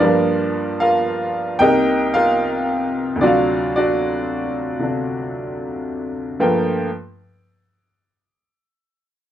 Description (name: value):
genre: solo jazz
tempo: 75 BPM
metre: 4/4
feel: swing 67% on 8ths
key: G minor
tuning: A4 = 441 Hz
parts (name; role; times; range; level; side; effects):
- bright upright piano; solo; 0.0-6.9 s; C2 to G5; -17 LUFS; equal; none
room: light reverb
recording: none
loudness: -17 LUFS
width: side -11 dB against mid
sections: 0.0-6.4 A section; 6.4-9.3 B section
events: none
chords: 0.0 Gm7; 1.6 Cm7; 3.2 D7#9; 6.4 Gm9